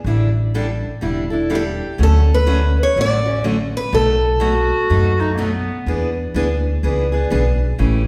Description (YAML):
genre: acoustic string swing (jazz manouche)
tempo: 124 BPM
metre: 4/4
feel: swing 63% on 8ths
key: unclear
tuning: A4 = 440 Hz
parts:
  - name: upright bass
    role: bass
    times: 0.0-8.1 s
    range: E1 to F#2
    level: -20 LUFS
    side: equal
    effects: none
  - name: picked steel-string acoustic guitar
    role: accompaniment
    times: 0.1-8.0 s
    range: B2 to A4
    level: -24 LUFS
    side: equal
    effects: none
  - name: picked steel-string acoustic guitar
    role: melody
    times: 1.6-5.3 s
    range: G4 to D5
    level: -22 LUFS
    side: equal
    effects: none
  - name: clear clarinet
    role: second line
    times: 4.4-6.4 s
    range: Bb3 to F#4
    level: -25 LUFS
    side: equal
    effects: none
room: wet recital hall reverb, RT60 1.5 s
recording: recorded in a church or concert hall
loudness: -18 LUFS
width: mono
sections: 0.0-8.1 A section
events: none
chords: 0.1 A7sus4; 2.0 Dmaj7; 3.9 B7; 5.9 E7